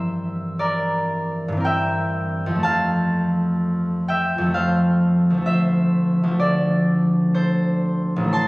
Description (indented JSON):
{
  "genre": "classical, solo harp piece",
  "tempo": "55-66 BPM",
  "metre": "3/4",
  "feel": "rubato",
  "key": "unclear",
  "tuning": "A4 = 441 Hz",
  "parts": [
    { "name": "concert harp", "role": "solo", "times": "0.0-8.5 s", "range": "A1 to C6", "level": "-18 LUFS", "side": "equal", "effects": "none" }
  ],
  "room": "moderate church reverb, RT60 3.3 s",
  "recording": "recorded on a phone in the room, studio reverb, compression",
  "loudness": "-18 LUFS",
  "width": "side -23 dB against mid",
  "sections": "0.0-8.5 A section",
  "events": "none",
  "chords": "0.0 C7/G; 2.6 F; 5.5 Dm",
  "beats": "0.59 1.65 | 2.64 3.61 4.55 | 5.46 6.40 7.34 | 8.34"
}